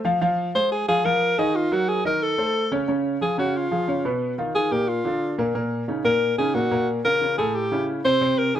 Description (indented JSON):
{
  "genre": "jazz",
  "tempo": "180 BPM",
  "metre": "4/4",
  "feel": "straight",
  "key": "unclear",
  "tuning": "A4 = 443 Hz",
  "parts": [
    { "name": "warm concert grand piano", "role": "accompaniment", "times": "0.0-8.6 s", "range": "A2 to F5", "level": "-23 LUFS", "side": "equal", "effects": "none" },
    { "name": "clear alto saxophone", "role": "melody", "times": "0.6-8.6 s", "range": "F4 to C5", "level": "-22 LUFS", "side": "equal", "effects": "none" }
  ],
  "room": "moderate studio reverb, RT60 0.8 s",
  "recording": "none",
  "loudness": "-20 LUFS",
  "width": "side -10 dB against mid",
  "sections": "0.0-2.9 A section; 2.9-8.6 B section",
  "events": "alto saxophone solo 2.9-8.6",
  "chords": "0.2 Ab69; 1.5 Ebmadd9; 2.2 Adim; 2.9 Db7; 4.2 Abm69; 4.9 Bb; 5.5 Ebm7; 6.9 Bbm; 7.5 A7",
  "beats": "| 0.22 0.55 0.88 1.22 | 1.55 1.88 2.22 2.55 | 2.88 3.21 3.55 3.88 | 4.22 4.55 4.88 5.22 | 5.55 5.88 6.22 6.55 | 6.88 7.22 7.55 7.88 | 8.22 8.55"
}